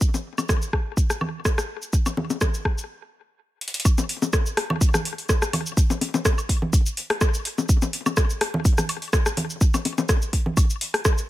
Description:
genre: techno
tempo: 125 BPM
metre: 4/4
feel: swing 54% on 16ths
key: none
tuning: none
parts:
  - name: booming analog drum machine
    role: drums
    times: 0.0-11.3 s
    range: hi-hat, rim click, shaker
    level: -27 LUFS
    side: equal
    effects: none
  - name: electronic kick drum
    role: drums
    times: 0.0-11.2 s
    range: none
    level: -20 LUFS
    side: equal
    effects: none
  - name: electronic bongos, woodblock, congas and rim click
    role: percussion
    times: 0.1-11.0 s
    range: none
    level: -26 LUFS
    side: left 2 dB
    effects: ping-pong delay
room: little or no reverb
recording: none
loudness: -20 LUFS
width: side -15 dB against mid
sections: 0.0-3.9 A section; 3.9-11.3 B section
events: stop 2.9-3.9; drum fill 3.6; drop 3.9-11.3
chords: none

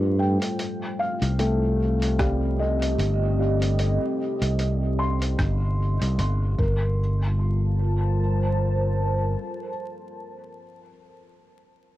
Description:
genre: ambient dub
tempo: 75 BPM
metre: 4/4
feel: swing 57% on 16ths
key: G minor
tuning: A4 = 440 Hz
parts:
  - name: deep dark ambient pad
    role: sustained chords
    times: 0.0-10.6 s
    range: G3 to A5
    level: -30 LUFS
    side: equal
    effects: chorus, built-in reverb, cassette tape, plate reverb
  - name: felt-muted upright piano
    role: arpeggios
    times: 0.0-12.0 s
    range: G3 to C6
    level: -30 LUFS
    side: left 1 dB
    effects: low-pass filter, cassette tape, tape echo, plate reverb
  - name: modern bright fingered electric bass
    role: bass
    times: 0.0-9.3 s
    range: G1 to G2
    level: -22 LUFS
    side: equal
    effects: tube saturation
  - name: lo-fi sampler-style drum kit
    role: drums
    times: 0.4-6.4 s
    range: hi-hat, rim click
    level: -33 LUFS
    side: equal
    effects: cassette tape, dub echo
  - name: electronic kick drum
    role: drums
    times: 2.2-6.8 s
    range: none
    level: -26 LUFS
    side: equal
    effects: overdrive, cassette tape
room: light reverb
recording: home recording on cassette, vinyl crackle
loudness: -21 LUFS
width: side -15 dB against mid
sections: 0.0-7.0 A section; 7.0-10.2 B section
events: none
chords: 0.0 G9sus4; 0.6 Cm; 6.6 Gm7; 7.0 Gm11

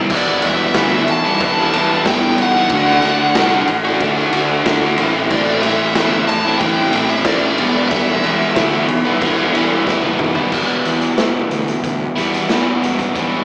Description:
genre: classic rock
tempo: 92 BPM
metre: 4/4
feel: straight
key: E minor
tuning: A4 = 440 Hz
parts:
  - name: crunchy overdriven guitar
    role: riff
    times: 0.0-13.4 s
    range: E2 to F#4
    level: -19 LUFS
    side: equal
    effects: slapback echo
  - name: fuzz fingered electric bass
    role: bass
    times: 0.0-13.4 s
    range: E1 to E2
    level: -25 LUFS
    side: equal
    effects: overdrive
  - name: raw garage drum kit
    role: drums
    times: 0.1-13.3 s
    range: crash cymbal, hi-hat, kick drum, ride cymbal, snare drum, toms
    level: -21 LUFS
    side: equal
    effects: none
  - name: nasal lead guitar with a parked wah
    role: melody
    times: 0.2-9.8 s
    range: D5 to A5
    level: -21 LUFS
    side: equal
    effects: overdrive, digital delay
room: light reverb, small room reverb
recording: live gig heard through the venue's PA, club reverb, small speaker sound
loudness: -16 LUFS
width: mono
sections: 0.0-10.5 A section; 10.5-13.4 B section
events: drum fill 9.9-10.5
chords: 0.1 Em; 2.7 D; 5.0 Am; 7.6 Em

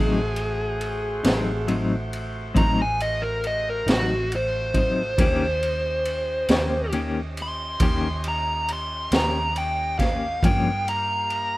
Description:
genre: slow blues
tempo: 46 BPM (dotted quarters)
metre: 12/8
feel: straight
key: unclear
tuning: A4 = 439 Hz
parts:
  - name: dark smooth lead guitar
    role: melody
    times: 0.0-11.6 s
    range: F#4 to C6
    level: -25 LUFS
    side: equal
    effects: overdrive
  - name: clean electric guitar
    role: accompaniment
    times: 0.0-10.7 s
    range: G2 to G4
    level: -25 LUFS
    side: left 3 dB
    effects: tremolo
  - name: overdriven tonewheel organ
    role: sustained chords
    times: 0.0-11.6 s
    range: A3 to F5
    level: -36 LUFS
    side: right 2 dB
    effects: slow rotary speaker
  - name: vintage muted fingered electric bass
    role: bass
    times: 0.0-11.6 s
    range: A1 to G2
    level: -30 LUFS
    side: right 1 dB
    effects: none
  - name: raw garage drum kit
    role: drums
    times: 0.4-11.5 s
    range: kick drum, ride cymbal, snare drum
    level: -26 LUFS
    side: equal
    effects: none
room: studio ambience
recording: rough home demo mix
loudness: -21 LUFS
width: side -18 dB against mid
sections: 0.0-11.6 A section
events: lead electric guitar solo 0.0-11.6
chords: 0.0 Adim7; 5.2 Eb7; 10.4 Gm7b5

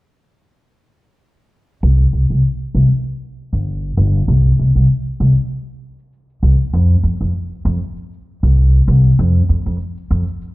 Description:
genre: sunset chillout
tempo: 98 BPM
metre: 4/4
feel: swing 55% on 16ths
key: unclear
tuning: A4 = 440 Hz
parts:
  - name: upright bass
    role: bass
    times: 1.8-10.2 s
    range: G1 to F2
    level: -12 LUFS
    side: equal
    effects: none
  - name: cabasa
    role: drums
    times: 1.8-10.5 s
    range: none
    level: -68 LUFS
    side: equal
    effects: none
room: little or no reverb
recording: played on a big sound system in a bare room, large studio reverb, low-pass filter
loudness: -13 LUFS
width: side -20 dB against mid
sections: 1.8-10.5 A section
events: none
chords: none

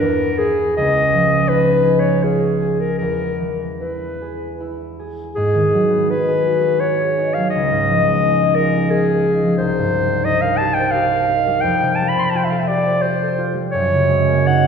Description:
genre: classical, impressionist duo for clarinet and harp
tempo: 75-90 BPM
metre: 3/4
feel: rubato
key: unclear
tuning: A4 = 440 Hz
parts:
  - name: warm clarinet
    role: melody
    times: 0.0-14.7 s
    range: G#4 to C6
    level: -17 LUFS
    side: left 1 dB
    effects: none
  - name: concert harp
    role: accompaniment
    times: 0.0-14.7 s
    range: C2 to C5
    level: -19 LUFS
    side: right 1 dB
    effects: none
room: wet scoring stage reverb, RT60 1.9 s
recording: heard from further back in the room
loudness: -15 LUFS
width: side -6 dB against mid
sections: 0.0-5.4 A section; 5.4-14.7 B section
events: none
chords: 0.0 E; 0.8 C#add9; 3.0 Emaj7; 5.4 G#m7; 7.5 C#add9; 9.6 Cm7; 11.6 Fadd9; 13.7 F#69

